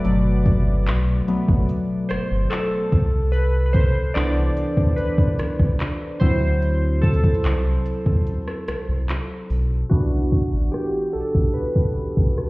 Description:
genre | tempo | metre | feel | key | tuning
contemporary R&B | 73 BPM | 4/4 | straight | unclear | A4 = 440 Hz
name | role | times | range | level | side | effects
warm analog keys | accompaniment | 0.0-12.5 s | B2 to D5 | -23 LUFS | equal | chorus
smooth R&B drum kit | drums | 0.0-12.5 s | handclaps, hi-hat, kick drum, rim click | -21 LUFS | equal | overdrive
sub bass with octave | bass | 0.1-12.3 s | G1 to E2 | -20 LUFS | equal | none
room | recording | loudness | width
digital ambience | heard muffled through a wall, stone room reverb, EQ, low-pass filter | -18 LUFS | side -22 dB against mid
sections
0.0-9.9 A section; 9.9-12.5 B section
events
synth keys solo 0.0-9.9, 9.9-12.5; break 8.3-9.9; filter sweep 9.9-12.5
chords
0.0 Gmaj7; 2.9 Cmaj9; 6.2 D9; 9.9 Cmaj9

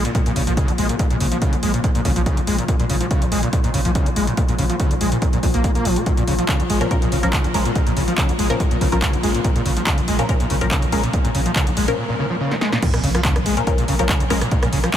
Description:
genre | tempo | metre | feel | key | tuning
driving peak-time techno | 142 BPM | 4/4 | straight | Bb minor | A4 = 441 Hz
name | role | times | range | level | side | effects
screaming distorted acid line | riff | 0.0-15.0 s | Bb2 to Bb3 | -22 LUFS | equal | distortion, ensemble chorus, sidechain pumping, analog delay
growling 808-style bass | bass | 0.0-14.8 s | Bb1 | -25 LUFS | equal | overdrive, sidechain pumping, low-pass filter
metallic inharmonic drone | drone | 0.0-12.0 s | Bb2 to F3 | -27 LUFS | left 3 dB | chorus, built-in reverb, sidechain pumping
techno drum kit | drums | 0.0-15.0 s | crash cymbal, handclaps, hi-hat, rim click, snare drum | -25 LUFS | equal | overdrive, sidechain pumping on hats, sidechain pumping on toms, sidechain pumping on cymbals
electronic kick drum | drums | 0.1-15.0 s | none | -21 LUFS | equal | none
filtered dub chord stab | stabs | 6.8-14.4 s | F3 to Bb4 | -26 LUFS | left 2 dB | phaser, vintage 12-bit sampler grit, sidechain pumping, analog delay
impact | sound effects | 12.8-14.5 s | none | -30 LUFS | equal | none
room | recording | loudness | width
moderate huge ambient reverb, RT60 6.4 s | dreamy mix soaked in reverb | -16 LUFS | side -10 dB against mid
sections
0.0-12.8 A section; 12.8-15.0 B section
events
break 12.0-12.8; drum fill 12.5-12.8; drop 12.8-15.0; impact 12.8-14.5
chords
0.0 Bbm

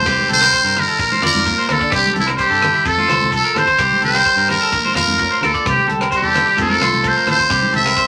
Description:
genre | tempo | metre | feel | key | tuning
highlife guitar band | 129 BPM | 4/4 | straight | C mixolydian | A4 = 440 Hz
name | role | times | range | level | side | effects
trumpet with metal mute | melody | 0.0-8.1 s | E4 to E5 | -17 LUFS | equal | none
fingerpicked steel-string acoustic guitar | accompaniment | 0.0-8.1 s | A2 to G4 | -30 LUFS | equal | none
electric guitar at the edge of break-up | arpeggios | 0.0-8.1 s | E4 to F5 | -23 LUFS | equal | none
fingered electric bass | bass | 0.0-7.9 s | Bb1 to A2 | -29 LUFS | equal | none
tight funk drum kit | drums | 0.1-8.1 s | crash cymbal, hi-hat, kick drum, rim click | -28 LUFS | equal | none
agogo bells | percussion | 0.1-8.0 s | none | -31 LUFS | equal | none
maracas | percussion | 0.1-8.1 s | none | -42 LUFS | equal | none
congas | percussion | 0.2-7.9 s | none | -29 LUFS | equal | none
room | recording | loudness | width
wet studio reverb, RT60 0.5 s | none | -15 LUFS | mono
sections
0.1-8.1 A section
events
none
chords
0.1 C; 1.0 Bb; 1.9 C; 2.9 F; 3.8 C; 4.7 Bb; 5.7 C; 6.6 F; 7.5 C

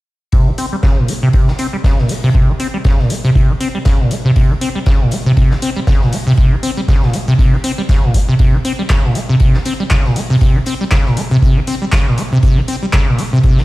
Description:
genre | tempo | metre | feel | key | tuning
acid house | 119 BPM | 4/4 | swing 57% on 16ths | unclear | A4 = 440 Hz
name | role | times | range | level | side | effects
acid bass, saw | riff | 0.3-13.6 s | Bb2 to C4 | -14 LUFS | equal | analog chorus, cassette tape, sidechain pumping, digital delay
big rock drum kit | drums | 0.3-13.6 s | hi-hat, snare drum | -31 LUFS | left 1 dB | sidechain pumping on hats, high-pass filter on hats, high-pass filter on snare, high-pass filter on room
electronic kick drum | drums | 0.3-13.6 s | none | -12 LUFS | equal | none
punchy analog drum machine | drums | 0.6-13.3 s | handclaps, hi-hat | -24 LUFS | left 1 dB | overdrive
room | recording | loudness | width
light reverb, small room ambience | played on a big sound system in a bare room, stone room reverb | -11 LUFS | side -19 dB against mid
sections
0.3-13.6 A section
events
none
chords
none

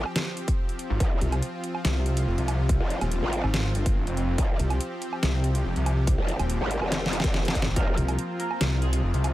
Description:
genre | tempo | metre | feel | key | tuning
heavy wobble dubstep | 142 BPM | 4/4 | half-time | F minor | A4 = 440 Hz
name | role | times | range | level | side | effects
supersaw pad | sustained chords | 0.0-9.3 s | F3 to G4 | -33 LUFS | equal | sidechain pumping
growl bass | bass | 0.0-8.0 s | F1 to Ab1 | -28 LUFS | equal | chorus, overdrive
dubstep drum kit | drums | 0.1-9.3 s | hi-hat, snare drum, woodblock | -30 LUFS | right 1 dB | overdrive
electronic kick drum | drums | 0.5-7.9 s | none | -25 LUFS | equal | overdrive
snarling distorted saw bass | bass | 0.9-9.3 s | Eb1 to C2 | -25 LUFS | equal | distortion, overdrive
clean electric guitar | melody | 7.8-9.3 s | Ab3 to Bb4 | -35 LUFS | right 2 dB | wide subtle chorus, digital delay
room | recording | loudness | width
little or no reverb | none | -23 LUFS | side -15 dB against mid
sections
0.0-9.3 A section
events
drum fill 6.9-7.8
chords
0.0 F5

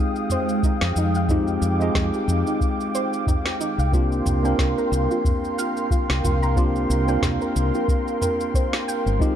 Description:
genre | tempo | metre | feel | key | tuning
sunset chillout | 91 BPM | 4/4 | swing 56% on 16ths | unclear | A4 = 440 Hz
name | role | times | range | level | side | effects
tine electric piano | accompaniment | 0.0-9.4 s | Ab3 to Bb4 | -26 LUFS | moving between left 4 dB and right 3 dB | auto-pan, ping-pong delay
airy breathy pad | sustained chords | 0.0-9.4 s | Ab3 to Eb6 | -27 LUFS | right 1 dB | chorus
smooth R&B drum kit | drums | 0.2-9.4 s | shaker, snare drum, toms | -28 LUFS | equal | none
soft round pluck | arpeggios | 0.3-9.4 s | Eb4 to Bb5 | -30 LUFS | right 1 dB | wide subtle chorus, ping-pong delay
electronic kick drum | drums | 0.6-9.4 s | none | -22 LUFS | equal | overdrive
woody fretless electric bass | bass | 0.8-9.2 s | G1 to F2 | -23 LUFS | equal | none
room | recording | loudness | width
light reverb, digital ambience | dark, warm production | -19 LUFS | side -10 dB against mid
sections
0.0-9.4 A section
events
none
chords
0.0 Fm9; 3.9 C7sus4

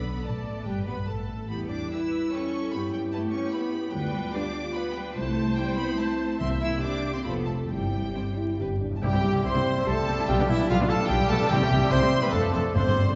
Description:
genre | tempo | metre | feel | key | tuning
quick classical-period movement for symphony orchestra | 144 BPM | 3/4 | rubato | C major from 3.9 s | A4 = 440 Hz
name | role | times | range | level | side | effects
clear studio violin section | melody | 0.0-13.2 s | E5 to E6 | -38 LUFS | equal | none
warm studio violin section | second line | 0.0-13.2 s | D4 to C5 | -40 LUFS | equal | none
rich studio viola section | accompaniment | 0.0-13.1 s | D3 to E5 | -38 LUFS | equal | none
mellow French horn section | sustained chords | 0.0-13.2 s | E3 to G4 | -34 LUFS | equal | none
rich chamber cello section | bass | 0.0-13.1 s | C2 to E4 | -34 LUFS | equal | none
warm studio double bass section | bass | 0.0-13.0 s | F1 to G2 | -33 LUFS | equal | none
timpani | percussion | 6.4-13.2 s | G2 to C3 | -33 LUFS | equal | none
mellow cor anglais | second line | 9.0-13.2 s | D5 to F5 | -40 LUFS | equal | none
silver concert flute | second line | 9.0-13.2 s | E5 to C6 | -35 LUFS | equal | none
warm clarinet | second line | 9.0-13.2 s | E4 to C5 | -36 LUFS | equal | none
warm bassoon | accompaniment | 9.0-13.2 s | F3 to G3 | -36 LUFS | equal | none
clear trumpet | stabs | 9.0-13.2 s | E4 to C5 | -33 LUFS | equal | none
room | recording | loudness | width
wet concert hall reverb, RT60 1.8 s | heard from further back in the room, vinyl crackle, nothing above 7.6 kHz | -26 LUFS | mono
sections
0.0-9.0 A section; 9.0-13.2 B section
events
timpani fill 8.6-9.0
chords
0.2 D5; 1.5 Em; 2.7 Em/G; 3.9 G7/D; 5.2 C; 6.4 C7; 7.2 F; 7.7 C/G; 8.6 G5; 9.0 C; 10.3 G7/B; 11.5 C; 12.3 Dm/F

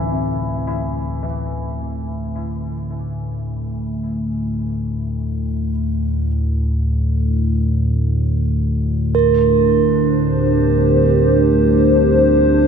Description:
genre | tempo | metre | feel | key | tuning
dark ambient drone | free time | none | none | unclear | A4 = 443 Hz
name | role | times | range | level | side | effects
dark baby grand piano | arpeggios | 0.0-9.2 s | A2 to E4 | -27 LUFS | left 2 dB | tape echo
analog drone | drone | 0.0-12.7 s | D2 to A2 | -18 LUFS | left 1 dB | chorus
quartz singing bowl | texture | 9.1-12.7 s | Bb4 | -17 LUFS | right 10 dB | none
dark analog pad | sustained chords | 9.4-12.7 s | D4 to C5 | -16 LUFS | equal | chorus
room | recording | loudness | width
wet cathedral reverb, RT60 5.6 s | nothing above 10.4 kHz | -16 LUFS | side -6 dB against mid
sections
0.0-12.7 A section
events
filter sweep on synth drone 0.0-12.7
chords
0.0 D5; 9.1 Bb

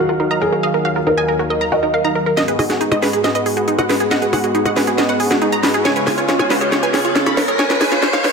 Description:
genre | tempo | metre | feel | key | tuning
uplifting trance | 138 BPM | 4/4 | straight | unclear | A4 = 440 Hz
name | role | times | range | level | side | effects
wide unison pluck | melody | 0.0-8.3 s | Ab4 to Cb6 | -20 LUFS | right 1 dB | tape echo
felt-muted upright piano | second line | 0.0-2.3 s | Gb4 to Eb5 | -20 LUFS | left 1 dB | dub echo
filtered supersaw swell | sustained chords | 0.0-8.3 s | Eb2 to F5 | -22 LUFS | equal | none
wide unison pluck | arpeggios | 0.0-8.3 s | Db4 to F5 | -20 LUFS | right 2 dB | dub echo
techno drum kit | drums | 2.4-8.3 s | hi-hat, percussion blips, snare drum | -19 LUFS | left 1 dB | overdrive
riser | sound effects | 4.1-8.3 s | none | -23 LUFS | equal | none
room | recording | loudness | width
moderate lush hall reverb, RT60 1.8 s, digital ambience | high-pass filter | -14 LUFS | side -5 dB against mid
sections
0.0-2.4 A section; 2.4-8.3 B section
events
build-up 2.4-8.3; drum fill 2.4-8.3; riser 4.1-8.3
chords
0.0 Ebmadd9; 2.4 Abm7; 5.9 Db7

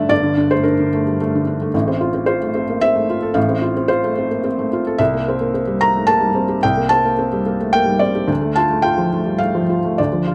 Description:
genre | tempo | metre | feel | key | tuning
neoclassical minimalist piano | 110 BPM | 3/4 | rubato | unclear | A4 = 439 Hz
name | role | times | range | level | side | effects
felt-muted upright piano | solo | 0.0-10.3 s | G1 to Bb5 | -18 LUFS | equal | none
room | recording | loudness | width
light reverb | none | -18 LUFS | mono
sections
0.0-10.3 A section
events
none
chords
0.0 Gmadd9; 1.7 F/A; 5.0 C7; 8.3 Dm

